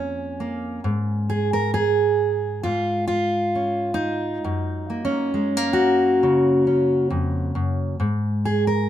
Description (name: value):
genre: folk, solo fingerstyle acoustic guitar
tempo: 67 BPM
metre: 4/4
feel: rubato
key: Db major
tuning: A4 = 440 Hz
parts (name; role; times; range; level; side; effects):
- fingerpicked steel-string acoustic guitar; solo; 0.0-8.9 s; F2 to Bb4; -20 LUFS; equal; none
room: moderate small room reverb, RT60 0.5 s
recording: minimal, uncompressed stereo recording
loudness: -20 LUFS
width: side -11 dB against mid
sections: 0.0-8.9 A section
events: none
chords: 0.0 Bbm; 0.8 Db/Ab; 4.4 Gb; 8.0 Ab5